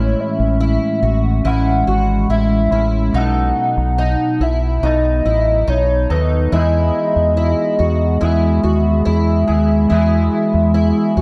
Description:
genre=dream pop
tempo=71 BPM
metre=4/4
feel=straight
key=E major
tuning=A4 = 440 Hz
part: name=warbly nostalgic lead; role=melody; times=0.0-11.2 s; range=B4 to F#5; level=-23 LUFS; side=equal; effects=chorus, tape echo
part: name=electric guitar with an envelope filter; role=accompaniment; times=0.0-11.2 s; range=A2 to A4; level=-26 LUFS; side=equal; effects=harmonic tremolo, lush chorus
part: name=warbly tape-like pad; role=sustained chords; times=0.0-11.2 s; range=G#3 to G#4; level=-22 LUFS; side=equal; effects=chorus, built-in reverb
part: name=fingerpicked twelve-string acoustic guitar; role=arpeggios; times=0.0-11.2 s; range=D#4 to F#4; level=-26 LUFS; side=equal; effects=analog chorus, tape echo
part: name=deep dub fingered electric bass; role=bass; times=0.0-11.2 s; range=G#1 to E2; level=-19 LUFS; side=equal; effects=none
room=moderate scoring stage reverb, RT60 1.6 s, digital ambience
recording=dark, warm production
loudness=-16 LUFS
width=mono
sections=0.0-11.2 A section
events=none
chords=0.0 Amaj7; 3.1 B7; 6.5 Emaj7

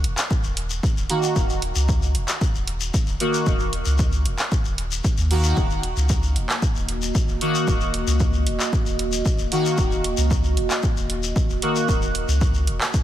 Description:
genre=dub techno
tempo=114 BPM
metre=4/4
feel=straight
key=Eb minor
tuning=A4 = 439 Hz
part: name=warm sub bass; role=bass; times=0.0-12.8 s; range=Eb1 to Eb2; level=-23 LUFS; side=equal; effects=tube saturation, sidechain pumping
part: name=punchy analog drum machine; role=drums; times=0.0-12.9 s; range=handclaps, hi-hat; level=-28 LUFS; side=right 1 dB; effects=none
part: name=shekere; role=percussion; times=0.2-13.0 s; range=none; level=-31 LUFS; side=left 7 dB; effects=none
part: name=electronic kick drum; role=drums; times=0.3-13.0 s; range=none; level=-22 LUFS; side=equal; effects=none
part: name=resonant sweep polysynth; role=stabs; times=1.1-11.9 s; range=Eb3 to Gb4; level=-26 LUFS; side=equal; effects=chorus, phaser, sidechain pumping, dub echo
part: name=dark analog pad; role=sustained chords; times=6.4-13.0 s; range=Bb3 to Eb5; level=-29 LUFS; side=right 2 dB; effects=chorus, phaser, sidechain pumping
room=little or no reverb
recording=none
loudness=-19 LUFS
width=side -12 dB against mid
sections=0.0-13.0 A section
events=none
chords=0.0 Ebm

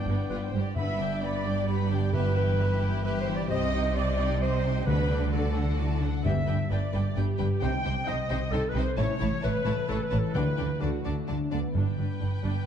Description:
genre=cinematic, heroic adventure film score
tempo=131 BPM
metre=3/4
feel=straight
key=G major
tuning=A4 = 439 Hz
part: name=warm studio violin section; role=melody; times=0.0-12.7 s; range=Eb5 to B5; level=-42 LUFS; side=left 2 dB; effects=none
part: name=clear symphonic violin section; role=second line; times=0.0-12.7 s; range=B3 to Eb5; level=-38 LUFS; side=left 3 dB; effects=none
part: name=mellow cor anglais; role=second line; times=0.0-0.5 s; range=D5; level=-41 LUFS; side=right 1 dB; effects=none
part: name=dark French horn section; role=sustained chords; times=0.0-11.7 s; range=B3 to A4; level=-39 LUFS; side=left 3 dB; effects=none
part: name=concert harp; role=arpeggios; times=0.0-12.7 s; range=G2 to D5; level=-34 LUFS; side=left 6 dB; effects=none
part: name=rich symphonic viola section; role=accompaniment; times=0.1-12.7 s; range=G3 to G5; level=-37 LUFS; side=right 2 dB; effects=none
part: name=rich studio cello section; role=bass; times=0.1-12.5 s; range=G2 to D3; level=-32 LUFS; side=right 2 dB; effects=none
part: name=rich studio double bass section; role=bass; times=0.1-12.5 s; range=G1 to D2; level=-30 LUFS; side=right 2 dB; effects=none
part: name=mellow clarinet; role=second line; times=0.3-11.3 s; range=F#4 to G5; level=-33 LUFS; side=left 2 dB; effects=none
part: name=timpani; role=percussion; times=0.8-2.8, 4.9-6.9, 10.3-12.4 s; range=G2 to D3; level=-33 LUFS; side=equal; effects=none
room=moderate scoring stage reverb, RT60 1.8 s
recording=dark, warm production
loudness=-25 LUFS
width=side -8 dB against mid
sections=0.8-11.7 A section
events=none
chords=0.0 G; 2.1 Em/G; 3.5 Cm; 4.9 G/D; 5.3 D; 6.2 G; 7.6 Cm; 9.0 A; 10.3 G/D; 10.8 D; 11.7 G

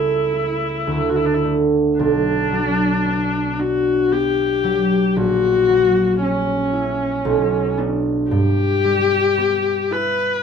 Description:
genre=classical, romantic duo for viola and harp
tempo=57 BPM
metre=3/4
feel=rubato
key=unclear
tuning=A4 = 442 Hz
part: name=rich viola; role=melody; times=0.0-10.4 s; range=C#4 to B4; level=-19 LUFS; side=left 4 dB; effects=none
part: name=concert harp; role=accompaniment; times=0.0-10.4 s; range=A#1 to E4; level=-19 LUFS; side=right 2 dB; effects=none
room=light reverb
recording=dark, warm production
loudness=-16 LUFS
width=side -6 dB against mid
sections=0.0-10.4 A section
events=none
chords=0.0 A7/C#; 0.9 D5; 2.0 Bm; 5.2 F#7/A#; 7.3 Bm; 8.3 Em/G

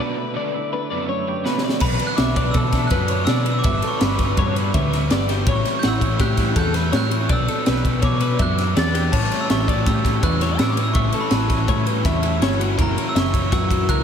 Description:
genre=math rock and midwest emo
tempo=164 BPM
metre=5/4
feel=straight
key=B minor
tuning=A4 = 438 Hz
part: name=clean electric guitar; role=accompaniment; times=0.0-3.6 s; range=F#2 to G4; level=-30 LUFS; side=right 5 dB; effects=tremolo
part: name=twelve-string electric guitar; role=arpeggios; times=0.0-14.0 s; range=F#4 to D6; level=-26 LUFS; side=left 6 dB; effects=wide subtle chorus, ping-pong delay
part: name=raw garage guitar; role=riff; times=0.0-14.0 s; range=F#2 to E4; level=-26 LUFS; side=right 2 dB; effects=overdrive, analog chorus
part: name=crisp fusion drum kit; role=drums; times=1.5-14.0 s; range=crash cymbal, kick drum, ride cymbal, snare drum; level=-22 LUFS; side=equal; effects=none
part: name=glockenspiel with hard plastic mallets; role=melody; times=1.8-14.0 s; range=A5 to A6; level=-26 LUFS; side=right 1 dB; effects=ping-pong delay
part: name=hollow-body short-scale picked electric bass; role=bass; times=1.8-14.0 s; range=F#1 to B2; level=-22 LUFS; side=equal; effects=none
room=moderate huge ambient reverb, RT60 4.7 s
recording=dreamy mix soaked in reverb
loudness=-17 LUFS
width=side -8 dB against mid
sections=0.0-1.8 A section; 1.8-14.0 B section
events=break 0.0-1.8; drum fill 1.5-1.8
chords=0.0 Bm7; 3.6 G; 5.5 A7; 7.3 Bm; 9.1 A7; 12.8 F#7

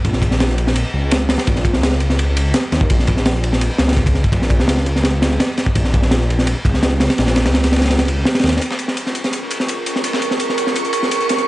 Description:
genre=drum and bass, jungle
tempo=168 BPM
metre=4/4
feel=straight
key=Bb minor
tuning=A4 = 440 Hz
part: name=dark detuned saw bass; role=bass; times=0.0-8.6 s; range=Bb1 to Eb2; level=-17 LUFS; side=equal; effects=tube saturation
part: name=crunchy breakbeat drum kit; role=drums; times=0.0-11.4 s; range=kick drum, ride cymbal, snare drum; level=-16 LUFS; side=equal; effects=high-pass filter on kick, high-pass filter on cymbals, high-pass filter on snare, high-pass filter on room
part: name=ethereal airy pad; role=sustained chords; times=9.0-11.5 s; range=Db4 to Bb4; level=-22 LUFS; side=right 3 dB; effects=ensemble chorus, built-in reverb
part: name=dusty soul sampler-style drum kit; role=drums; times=8.6-11.5 s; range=hi-hat, snare drum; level=-28 LUFS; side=left 4 dB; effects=overdrive, high-pass filter on hats, high-pass filter on snare, high-pass filter on room
part: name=wind-like tuned noise texture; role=texture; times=9.1-11.5 s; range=Db6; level=-24 LUFS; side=right 2 dB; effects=built-in reverb
room=studio reverb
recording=dry, gritty hardware recording, nothing above 10.5 kHz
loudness=-14 LUFS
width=side -17 dB against mid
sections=0.0-8.6 A section; 8.6-11.5 B section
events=kick drops out 7.9-8.6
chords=0.0 Bbm; 8.6 Bbm7

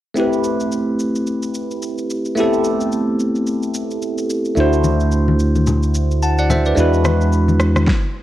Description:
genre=amapiano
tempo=109 BPM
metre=4/4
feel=swing 58% on 16ths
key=A dorian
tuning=A4 = 440 Hz
part: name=bell-like tine electric piano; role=accompaniment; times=0.1-7.9 s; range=G#3 to A5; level=-17 LUFS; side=equal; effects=phaser
part: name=deep house drum kit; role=drums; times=0.2-8.0 s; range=kick drum, rim click, shaker, snare drum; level=-24 LUFS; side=equal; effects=overdrive, vintage 12-bit sampler grit
part: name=fingered electric bass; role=bass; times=4.6-7.8 s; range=D2 to E2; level=-16 LUFS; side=equal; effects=none
part: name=congas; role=percussion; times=4.8-7.9 s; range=none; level=-22 LUFS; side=left 3 dB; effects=none
room=moderate plate reverb, RT60 2.0 s, digital ambience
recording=worn, warbling old tape, cassette tape, warbly pitch drift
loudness=-15 LUFS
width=side -13 dB against mid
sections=0.2-8.2 A section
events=stop 7.9-8.2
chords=0.2 Am9; 4.6 D7; 6.8 E7

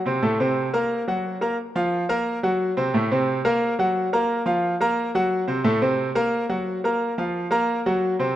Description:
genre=latin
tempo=177 BPM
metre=4/4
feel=straight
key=unclear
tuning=A4 = 440 Hz
part: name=clear concert grand piano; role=solo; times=0.1-8.3 s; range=A2 to Bb5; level=-20 LUFS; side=equal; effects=none
room=moderate plate reverb, RT60 2.9 s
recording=rough home demo mix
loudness=-20 LUFS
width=side -12 dB against mid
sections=0.0-1.6 A section; 1.6-8.4 A section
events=none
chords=0.2 Am; 0.9 Gb; 1.6 Bb5; 2.3 Gb; 2.9 Am; 3.6 Gb; 4.3 Bb5; 5.0 Gb; 5.6 Am; 6.3 Gb; 7.0 Bb5; 7.7 Gb

